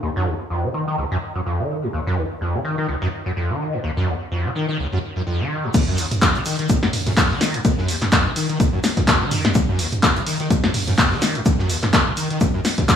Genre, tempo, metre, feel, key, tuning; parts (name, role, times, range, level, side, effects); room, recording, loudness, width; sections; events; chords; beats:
acid house; 126 BPM; 4/4; swing 56% on 16ths; Eb minor; A4 = 438 Hz
liquid acid bass; riff; 0.0-13.0 s; Db2 to Eb3; -22 LUFS; equal; overdrive, ensemble chorus, cassette tape, sidechain pumping, tape echo
electronic kick drum; drums; 5.7-13.0 s; -18 LUFS; left 1 dB; studio ambience
punchy analog drum machine; drums; 5.7-13.0 s; crash cymbal, handclaps, hi-hat, snare drum, toms; -20 LUFS; equal; studio ambience
warm soul drum kit; drums; 5.7-13.0 s; hi-hat, shaker, snare drum; -31 LUFS; equal; high-pass filter on hats, studio ambience, high-pass filter on snare, high-pass filter on perc, high-pass filter on room
light reverb, small room ambience; -18 LUFS; side -8 dB against mid
0.0-5.7 A section; 5.7-13.0 B section
drop 5.7-13.0
| 0.03 0.51 0.98 1.46 | 1.93 2.41 2.89 3.36 | 3.84 4.31 4.79 5.27 | 5.74 6.22 6.70 7.17 | 7.65 8.12 8.60 9.08 | 9.55 10.03 10.51 10.98 | 11.46 11.93 12.41 12.89